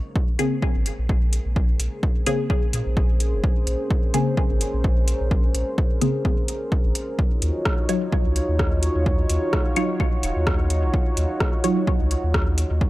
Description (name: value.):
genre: dub techno.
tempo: 128 BPM.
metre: 4/4.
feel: swing 55% on 16ths.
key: Bb minor.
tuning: A4 = 440 Hz.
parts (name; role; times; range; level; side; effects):
dark analog pad; sustained chords; 0.0-12.9 s; Db4 to Db5; -29 LUFS; equal; chorus, sidechain pumping.
electronic kick drum; drums; 0.2-12.9 s; none; -22 LUFS; equal; none.
filtered dub chord stab; stabs; 0.4-11.9 s; Db3 to Db5; -26 LUFS; left 1 dB; phaser, vintage 12-bit sampler grit, sidechain pumping, dub echo.
deep house drum kit; drums; 0.4-12.7 s; hi-hat, rim click; -28 LUFS; equal; overdrive.
pure sine sub bass; bass; 0.8-12.9 s; Eb1 to Bb2; -23 LUFS; equal; transformer saturation, sidechain pumping.
room: digital ambience.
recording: dry, gritty hardware recording, transformer saturation.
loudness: -19 LUFS.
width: side -17 dB against mid.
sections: 0.0-12.9 A section.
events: none.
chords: 0.0 Bbm9; 7.2 Ebm9.